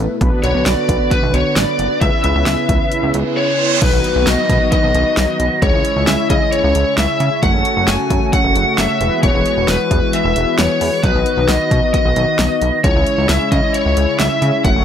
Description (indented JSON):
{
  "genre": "synth-pop",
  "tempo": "133 BPM",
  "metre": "4/4",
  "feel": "straight",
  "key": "unclear",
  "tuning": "A4 = 442 Hz",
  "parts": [
    { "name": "mellow synth brass", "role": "accompaniment", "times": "0.0-14.8 s", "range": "F#3 to D#5", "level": "-22 LUFS", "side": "left 1 dB", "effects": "chorus" },
    { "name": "brassy analog pad", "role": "sustained chords", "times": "0.0-14.8 s", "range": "B2 to F#4", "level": "-22 LUFS", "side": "right 1 dB", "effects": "chorus" },
    { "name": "chorused synth bass", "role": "bass", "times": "0.0-14.8 s", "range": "E1 to C#3", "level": "-18 LUFS", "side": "equal", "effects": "none" },
    { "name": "deep house drum kit", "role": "drums", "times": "0.2-14.8 s", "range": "crash cymbal, hi-hat, kick drum, snare drum", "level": "-18 LUFS", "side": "equal", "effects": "none" },
    { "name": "lead guitar through a small cranked amp", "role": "melody", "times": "0.4-14.8 s", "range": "B4 to G#5", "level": "-17 LUFS", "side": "left 2 dB", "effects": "overdrive" },
    { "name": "reverse cymbal and downlifter", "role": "sound effects", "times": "3.2-7.4 s", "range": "none", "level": "-24 LUFS", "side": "right 5 dB", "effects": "none" }
  ],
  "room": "light reverb",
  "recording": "none",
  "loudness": "-13 LUFS",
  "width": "side -9 dB against mid",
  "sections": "0.0-3.8 A section; 3.8-14.8 B section",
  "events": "reverse cymbal 3.2-3.8; silent gap 3.4-3.8",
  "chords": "0.2 Bm; 2.0 C#m7; 3.8 B; 5.6 C#m; 7.4 F#m; 9.0 Eadd9; 11.0 B; 12.8 C#m",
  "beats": "| 0.21 0.66 1.11 1.56 | 2.01 2.46 2.92 3.37 | 3.82 4.27 4.72 5.17 | 5.62 6.07 6.53 6.98 | 7.43 7.88 8.33 8.78 | 9.23 9.68 10.13 10.59 | 11.04 11.49 11.94 12.39 | 12.84 13.29 13.74 14.20 | 14.65"
}